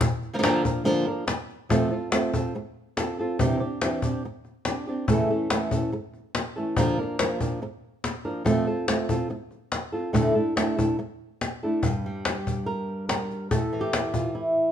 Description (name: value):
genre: flamenco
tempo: 142 BPM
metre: 4/4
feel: straight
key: unclear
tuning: A4 = 439 Hz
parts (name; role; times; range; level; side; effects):
- flamenco guitar; melody; 0.0-14.7 s; G2 to Bb4; -25 LUFS; right 1 dB; none
- cajon; percussion; 0.0-14.4 s; none; -27 LUFS; left 2 dB; none
room: moderate large studio reverb, RT60 1.0 s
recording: band playing live in one room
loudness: -24 LUFS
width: side -9 dB against mid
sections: 0.0-11.8 A section; 11.8-14.7 B section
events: none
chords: 0.0 Bb; 1.7 F; 3.4 Cadd9; 5.1 A; 6.8 Bb; 8.5 F; 10.1 Asus4; 11.8 N.C.; 13.5 A5